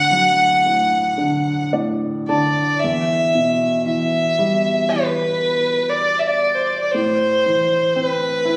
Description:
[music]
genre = celtic folk, Celtic slow air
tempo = 54-60 BPM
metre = 4/4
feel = rubato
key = E minor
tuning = A4 = 439 Hz
[part]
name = dark fiddle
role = melody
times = 0.0-8.6 s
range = B4 to F#5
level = -19 LUFS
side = equal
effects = none
[part]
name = felt-muted upright piano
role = accompaniment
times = 0.0-8.6 s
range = D2 to A5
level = -24 LUFS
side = equal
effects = none
[sound]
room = moderate recital hall reverb, RT60 1.4 s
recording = recorded on a phone in the room, studio reverb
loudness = -18 LUFS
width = mono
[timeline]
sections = 0.0-2.8 A section; 2.8-8.6 B section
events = felt piano fill 1.2-2.8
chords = 0.0 D; 2.8 Em; 6.9 Am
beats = 0.63 1.71 | 2.79 3.83 4.87 5.91 | 6.94 7.95

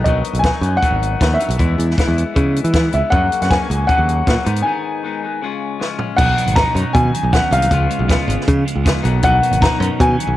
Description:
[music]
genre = indie rock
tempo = 157 BPM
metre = 4/4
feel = straight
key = unclear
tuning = A4 = 441 Hz
[part]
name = warm upright piano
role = melody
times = 0.0-10.4 s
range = D#5 to A#5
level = -19 LUFS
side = left 1 dB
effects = cassette tape
[part]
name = raw garage guitar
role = riff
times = 0.0-10.4 s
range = F#2 to E#4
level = -24 LUFS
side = left 8 dB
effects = overdrive, cassette tape
[part]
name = modern bright picked electric bass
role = bass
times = 0.0-10.4 s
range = G#1 to E3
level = -17 LUFS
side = equal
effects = none
[part]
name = compact cocktail drum kit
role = drums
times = 0.1-10.3 s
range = crash cymbal, hi-hat, kick drum, snare drum, toms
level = -19 LUFS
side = equal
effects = none
[part]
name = sludgy distorted guitar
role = riff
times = 6.2-10.4 s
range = B2 to E#4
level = -23 LUFS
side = right 6 dB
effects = overdrive, wide subtle chorus, cassette tape, analog delay
[sound]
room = light reverb, small room ambience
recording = home recording on cassette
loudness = -14 LUFS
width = side -14 dB against mid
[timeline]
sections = 0.0-6.2 A section; 6.2-10.4 B section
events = break 4.7-6.2; drum fill 5.8-6.2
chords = 0.1 B; 1.6 E; 3.1 F#; 4.5 G#m; 5.4 C#; 6.2 Badd9; 7.7 C#7; 9.0 Badd9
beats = | 0.07 0.45 0.83 1.21 | 1.59 1.98 2.36 2.74 | 3.12 3.50 3.88 4.27 | 4.65 5.03 5.41 5.80 | 6.18 6.56 6.94 7.32 | 7.71 8.09 8.47 8.85 | 9.23 9.62 10.00

